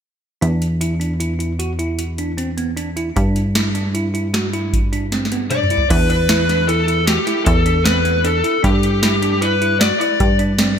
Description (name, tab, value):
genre	progressive instrumental, band music in an uneven meter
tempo	153 BPM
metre	7/4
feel	straight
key	E minor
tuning	A4 = 442 Hz
part	bell-like tine electric piano	arpeggios	0.4-10.7 s	B3 to F#4	-24 LUFS	right 3 dB	wide subtle chorus, ping-pong delay
part	plucky analog bass	bass	0.4-10.8 s	E2 to G2	-19 LUFS	equal	none
part	booming analog drum machine	drums	0.4-10.7 s	crash cymbal, hi-hat, kick drum, snare drum, toms	-20 LUFS	equal	gated reverb
part	lead guitar through a small cranked amp	melody	5.5-10.4 s	G4 to D5	-17 LUFS	left 2 dB	overdrive, ping-pong delay
room	light reverb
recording	bright 1980s-style digital production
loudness	-15 LUFS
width	side -8 dB against mid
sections	0.4-5.9 A section; 5.9-10.8 B section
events	drum fill 5.1-5.9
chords	0.4 E5; 3.2 G5; 5.9 E7(no3); 8.6 G5